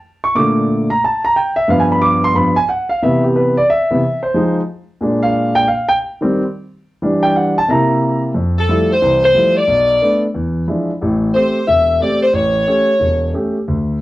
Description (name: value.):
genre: jazz.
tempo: 180 BPM.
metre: 4/4.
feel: swing 64% on 8ths.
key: unclear.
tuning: A4 = 438 Hz.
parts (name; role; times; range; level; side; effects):
warm concert grand piano; accompaniment; 0.2-14.0 s; E1 to D6; -14 LUFS; equal; none.
edgy saxophone section; melody; 8.6-13.3 s; A4 to E5; -13 LUFS; left 1 dB; none.
room: moderate club reverb, RT60 0.6 s.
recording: worn, warbling old tape, cassette tape, warbly pitch drift.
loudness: -13 LUFS.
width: side -17 dB against mid.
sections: 0.0-8.3 A section; 8.3-14.0 B section.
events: grand piano solo 0.0-8.3.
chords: 0.3 Bbmaj7; 1.7 G7; 3.0 Cmaj7; 4.3 Fm7; 5.0 Bb7; 5.7 Eb6; 7.0 Em11; 7.7 C7; 8.3 Fmaj9; 9.7 Bm7; 10.3 E7b9; 11.0 Am7; 12.3 A7.